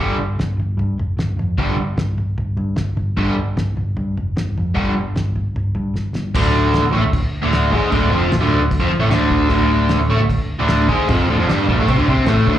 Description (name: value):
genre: garage rock duo or trio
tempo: 151 BPM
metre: 4/4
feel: straight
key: D minor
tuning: A4 = 440 Hz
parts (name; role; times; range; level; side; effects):
- raw garage guitar; riff; 0.0-12.6 s; D2 to C4; -17 LUFS; equal; overdrive, slapback echo
- hollow-body short-scale picked electric bass; bass; 0.0-12.6 s; D1 to G2; -20 LUFS; equal; none
- cloth-damped thuddy drum kit; drums; 0.2-12.6 s; crash cymbal, kick drum, snare drum, toms; -23 LUFS; equal; none
room: studio ambience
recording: live gig heard through the venue's PA, club reverb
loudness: -15 LUFS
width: side -11 dB against mid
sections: 0.0-6.3 A section; 6.3-12.6 B section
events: drum fill 6.0-6.3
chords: 0.0 G5; 6.3 Dm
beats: | 0.00 0.40 0.79 1.19 | 1.59 1.98 2.38 2.78 | 3.17 3.57 3.97 4.37 | 4.76 5.16 5.55 5.95 | 6.35 6.74 7.14 7.53 | 7.93 8.32 8.72 9.11 | 9.51 9.90 10.30 10.70 | 11.09 11.49 11.89 12.28